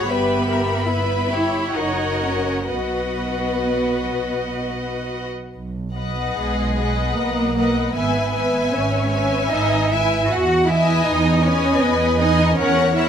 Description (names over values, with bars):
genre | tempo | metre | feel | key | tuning
classical, slow romantic movement for string orchestra | 60-80 BPM | 3/4 | rubato | B major | A4 = 440 Hz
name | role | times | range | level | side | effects
rich studio violin section | melody | 0.0-13.1 s | G4 to G#5 | -27 LUFS | left 6 dB | none
rich studio violin section | second line | 0.0-13.1 s | G#4 to B5 | -25 LUFS | left 2 dB | none
rich studio viola section | accompaniment | 0.0-13.1 s | E4 to E5 | -24 LUFS | equal | none
warm studio cello section | bass | 0.0-13.1 s | G#3 to F#4 | -23 LUFS | right 2 dB | none
warm studio double bass section | bass | 0.0-13.1 s | F#1 to E2 | -24 LUFS | right 2 dB | none
room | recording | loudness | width
moderate recital hall reverb, RT60 1.6 s | close, detailed microphones | -17 LUFS | side -8 dB against mid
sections
0.0-5.5 A section; 5.5-13.1 B section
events
none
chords
0.1 Em/G; 1.8 F#; 2.7 B; 8.0 E/G#; 10.3 Emaj7; 12.6 F#7/E